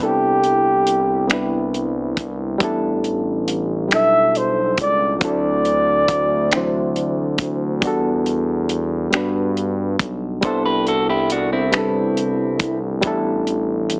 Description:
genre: slow six-eight R&B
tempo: 46 BPM (dotted quarters)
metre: 6/8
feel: straight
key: unclear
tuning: A4 = 440 Hz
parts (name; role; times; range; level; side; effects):
- breathy flugelhorn; melody; 0.0-7.4 s; G4 to E5; -17 LUFS; equal; none
- bright reed electric piano; accompaniment; 0.0-14.0 s; B2 to C5; -21 LUFS; equal; plate reverb
- smooth gliding synth bass; bass; 0.0-14.0 s; A1 to G2; -25 LUFS; equal; none
- damped 70s drum kit; drums; 0.4-14.0 s; finger snaps, hi-hat, kick drum; -20 LUFS; equal; none
- electric guitar at the edge of break-up; second line; 10.4-12.8 s; C4 to C5; -21 LUFS; equal; plate reverb
room: moderate studio ambience, RT60 0.5 s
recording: heavily compressed radio sound, small speaker sound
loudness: -16 LUFS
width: side -36 dB against mid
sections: 0.0-14.0 A section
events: none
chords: 0.0 Cmaj13; 2.6 A9sus4; 5.2 D7; 7.8 Em11; 10.4 Cmaj13; 13.0 A9sus4

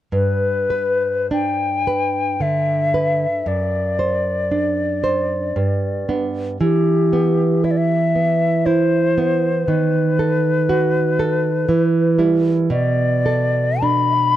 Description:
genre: romantic duo for flute and classical guitar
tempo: 49-61 BPM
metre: 3/4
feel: rubato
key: G major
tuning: A4 = 444 Hz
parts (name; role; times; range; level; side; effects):
- hollow concert flute; melody; 0.1-14.4 s; G4 to B5; -20 LUFS; left 4 dB; tape echo
- nylon-string guitar; accompaniment; 0.1-14.4 s; F#2 to C5; -18 LUFS; right 3 dB; none
room: little or no reverb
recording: dry, close 1970s-style studio recording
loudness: -16 LUFS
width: side -12 dB against mid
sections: 0.1-14.4 A section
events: none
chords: 0.1 G; 3.5 D7/F#; 5.6 G; 6.6 Em; 9.7 B7/D#; 11.7 Em; 12.7 Bm7

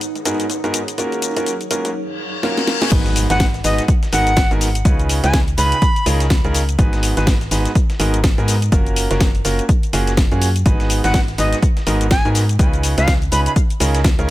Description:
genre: piano house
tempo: 124 BPM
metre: 4/4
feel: swing 59% on 16ths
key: G# dorian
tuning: A4 = 440 Hz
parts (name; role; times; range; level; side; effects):
- dusty soul sampler-style drum kit; drums; 0.0-14.2 s; hi-hat, snare drum; -32 LUFS; right 1 dB; none
- garage drum kit; drums; 0.0-14.3 s; crash cymbal, hi-hat, shaker, snare drum; -23 LUFS; left 1 dB; none
- granular cloud pad; texture; 0.0-1.9 s; D#4 to F#5; -28 LUFS; right 1 dB; built-in reverb, sidechain pumping
- clear baby grand piano; riff; 0.3-14.3 s; G#2 to B4; -22 LUFS; right 1 dB; sidechain pumping, digital delay
- reverse cymbal and impact; sound effects; 2.1-4.9 s; none; -25 LUFS; left 4 dB; none
- organ-like FM bass; bass; 2.9-14.3 s; F#1 to G#2; -19 LUFS; equal; sidechain pumping
- electronic kick drum; drums; 2.9-14.2 s; none; -16 LUFS; equal; overdrive
- breathy bright jazz flute; melody; 3.3-6.1, 11.0-13.5 s; D#5 to B5; -22 LUFS; equal; digital delay
room: digital ambience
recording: none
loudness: -14 LUFS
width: side -16 dB against mid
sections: 0.0-2.9 A section; 2.9-14.3 B section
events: reverse cymbal 2.1-2.9; drum fill 2.4-2.9; drop 2.9-14.3; impact 2.9-4.9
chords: 0.0 G#m7; 1.0 F#maj7; 2.9 G#m7; 4.9 C#9; 6.8 G#m7; 8.7 F#maj7; 10.7 G#m7; 12.6 C#9

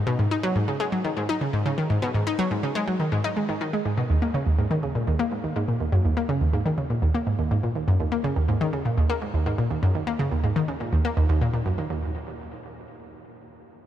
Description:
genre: ambient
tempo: 123 BPM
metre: 4/4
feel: straight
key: Eb minor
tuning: A4 = 441 Hz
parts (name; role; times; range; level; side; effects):
- analog pluck; solo; 0.0-12.1 s; Eb2 to Eb4; -22 LUFS; equal; chorus, tape echo
room: moderate huge ambient reverb, RT60 7.6 s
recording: none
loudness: -22 LUFS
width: side -11 dB against mid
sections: 0.0-4.1 A section; 4.1-11.9 B section; 11.9-13.9 C section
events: none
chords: none

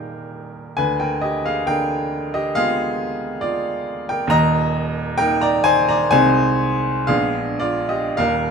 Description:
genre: classical, romantic nocturne for solo piano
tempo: 51-70 BPM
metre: 4/4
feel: rubato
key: Eb major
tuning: A4 = 440 Hz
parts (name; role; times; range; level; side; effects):
- clear baby grand piano; solo; 0.0-8.5 s; Eb1 to Bb5; -17 LUFS; equal; none
room: moderate stone room reverb, RT60 1.1 s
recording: close, detailed microphones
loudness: -17 LUFS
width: side -6 dB against mid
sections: 0.0-8.5 A section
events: none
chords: 0.0 Eb; 0.8 Ddim7; 4.3 Eb5; 6.1 Ab/C; 7.1 Bb7b9

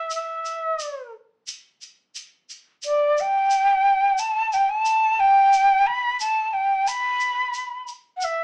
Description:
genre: andean folk, Andean ensemble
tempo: 89 BPM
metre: 4/4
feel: straight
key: E minor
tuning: A4 = 441 Hz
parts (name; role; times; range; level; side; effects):
- breathy quena; melody; 0.0-8.4 s; D5 to B5; -18 LUFS; equal; none
- tube shaker; percussion; 0.1-8.4 s; none; -33 LUFS; right 1 dB; none
room: moderate small room reverb, RT60 0.5 s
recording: small speaker sound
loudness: -18 LUFS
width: side -26 dB against mid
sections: 0.0-8.4 A section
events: none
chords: none

